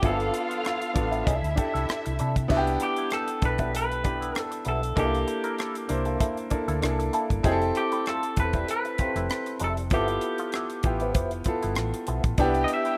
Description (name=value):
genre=lush 1970s-style soul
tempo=97 BPM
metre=4/4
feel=swing 54% on 16ths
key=C major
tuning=A4 = 440 Hz
part: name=electric guitar through a small old amp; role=melody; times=0.0-13.0 s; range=G4 to E5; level=-33 LUFS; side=equal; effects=none
part: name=warm studio violin section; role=second line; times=0.0-2.5, 12.4-13.0 s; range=E4 to G5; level=-35 LUFS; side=equal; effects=none
part: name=clear grand piano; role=accompaniment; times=0.0-13.0 s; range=Bb3 to C5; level=-31 LUFS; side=equal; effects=none
part: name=direct-recorded clean electric guitar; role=riff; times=0.0-13.0 s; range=F3 to Bb4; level=-36 LUFS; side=equal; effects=wah, tremolo
part: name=hollow-body short-scale fingered electric bass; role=bass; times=0.0-12.6 s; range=E1 to C3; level=-32 LUFS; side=equal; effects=none
part: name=tight funk drum kit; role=drums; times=0.0-13.0 s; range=crash cymbal, hi-hat, kick drum, rim click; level=-31 LUFS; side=equal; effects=none
room=light reverb, small room ambience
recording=rough home demo mix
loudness=-27 LUFS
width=mono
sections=0.0-2.5 A section; 2.5-13.0 A section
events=none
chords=0.0 G13; 1.3 C69; 2.5 Cmaj7 (rootless); 5.0 C13; 7.4 Fmaj9; 9.9 G13; 12.4 Cmaj7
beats=| 0.03 0.65 1.27 1.89 | 2.50 3.12 3.74 4.36 | 4.97 5.59 6.21 6.83 | 7.44 8.06 8.68 9.30 | 9.91 10.53 11.15 11.76 | 12.38